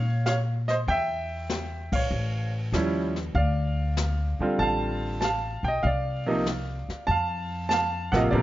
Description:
jazz piano trio; 97 BPM; 4/4; swing 69% on 8ths; A4 = 442 Hz
bright upright piano; melody; 0.0-8.4 s; C3 to A5; -26 LUFS; right 1 dB
upright bass; bass; 0.0-8.4 s; A1 to Bb2; -28 LUFS; left 1 dB
jazz brush drum kit; drums; 0.3-8.4 s; brushed snare drum, hi-hat, kick drum, ride cymbal, snare drum; -34 LUFS; left 2 dB
light reverb; nothing above 7.5 kHz; -24 LUFS; side -15 dB against mid
0.0-8.4 A section
band accent 1.8-2.1
0.0 Gbmaj7 (rootless); 0.9 Edim; 2.1 A7b13; 3.4 Dm7; 5.8 Csus4; 7.1 F

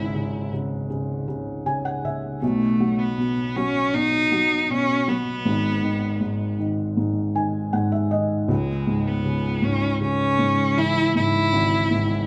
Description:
pop; 79 BPM; 4/4; straight; C# minor; A4 = 439 Hz
rich cello; melody; 0.0-12.3 s; G#3 to E4; -25 LUFS; equal
felt-muted upright piano; accompaniment; 0.0-12.3 s; G#1 to G#5; -25 LUFS; equal
moderate large studio reverb, RT60 1.1 s; band playing live in one room; -23 LUFS; mono
0.0-12.3 A section
felt piano fill 1.3-2.4, 7.0-8.5
0.0 C#m; 2.4 B; 5.5 G#m; 8.5 C#m

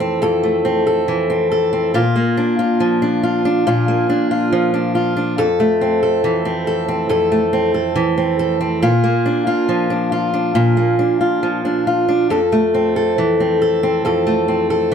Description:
pop; 70 BPM; 4/4; straight; F major; A4 = 441 Hz
fingerpicked steel-string acoustic guitar; solo; 0.0-14.9 s; F2 to A4; -14 LUFS; equal
light reverb; -14 LUFS; side -7 dB against mid
0.0-14.9 A section
0.0 Fmaj7; 1.9 Bb; 5.4 Fmaj7; 8.8 Bb; 12.3 Fmaj7

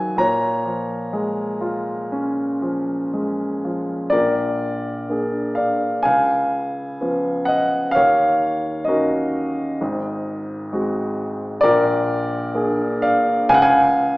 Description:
classical, lyrical solo piano; 58-66 BPM; 4/4; rubato; Bb minor; A4 = 441 Hz
dark baby grand piano; solo; 0.0-14.2 s; Ab1 to Bb5; -18 LUFS; equal
moderate recital hall reverb, RT60 1.3 s; recorded in a church or concert hall, small speaker sound; -18 LUFS; side -20 dB against mid
0.0-4.1 A section; 4.1-14.2 B section
0.2 Bbm7; 4.1 Bb7; 6.1 Db7; 7.9 Ebm7; 9.8 Ab7; 11.6 Bb7; 13.5 Db

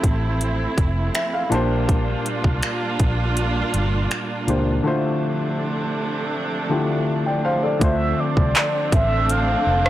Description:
contemporary R&B; 81 BPM; 4/4; straight; D minor; A4 = 443 Hz
warm baby grand piano; accompaniment; 0.0-9.9 s; Bb2 to A5; -24 LUFS; left 2 dB
warm symphonic string section; sustained chords; 0.0-9.9 s; C3 to F4; -25 LUFS; right 3 dB
vintage muted fingered electric bass; bass; 0.0-9.9 s; F1 to D2; -23 LUFS; equal
trap drum kit; drums; 0.0-9.9 s; finger snaps, handclaps, hi-hat, kick drum, rim click; -21 LUFS; equal; soft clipping on snare
mellow horn-like synth lead; melody; 7.8-9.9 s; D5 to F5; -22 LUFS; equal; chorus
light reverb; blown-out, overdriven recording, overdrive; -19 LUFS; side -14 dB against mid
0.0-7.8 A section; 7.8-9.9 B section
grand piano fill 0.8-1.9
0.0 Fmaj7; 1.5 Bb6; 4.8 Dm7

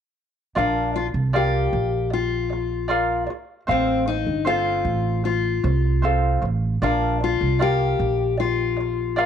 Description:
pop; 77 BPM; 4/4; straight; Bb major; A4 = 440 Hz
fingerpicked steel-string acoustic guitar; melody; 0.6-9.3 s; C4 to G4; -24 LUFS; left 8 dB
ukulele; accompaniment; 0.6-9.3 s; C4 to F5; -24 LUFS; right 1 dB
upright bass; bass; 0.6-9.3 s; G1 to C2; -24 LUFS; right 2 dB
moderate spring reverb, RT60 1.2 s, studio ambience; -20 LUFS; side -8 dB against mid
0.6-9.3 A section
0.6 Bb; 3.7 F; 6.8 Bb

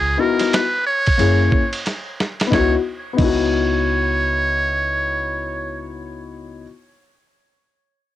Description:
hip hop, jazz-hop; 90 BPM; 4/4; swing 63% on 16ths; C# dorian; A4 = 441 Hz
trumpet with metal mute; melody; 0.0-6.0 s; G#4 to C#5; -21 LUFS; right 2 dB; cassette tape, analog delay
upright bass; bass; 0.0-6.6 s; F#1 to C#2; -23 LUFS; right 1 dB
dark upright piano; accompaniment; 0.2-6.7 s; A#3 to G#4; -21 LUFS; left 6 dB
dusty soul sampler-style drum kit; drums; 0.4-3.4 s; crash cymbal, hi-hat, kick drum, ride cymbal, snare drum; -22 LUFS; right 1 dB; cassette tape
little or no reverb; home recording on cassette; -16 LUFS; side -13 dB against mid
0.0-2.5 A section; 2.5-5.2 B section
drum fill 1.9-2.5
0.0 C#m11; 1.2 F#9; 2.5 C#m11

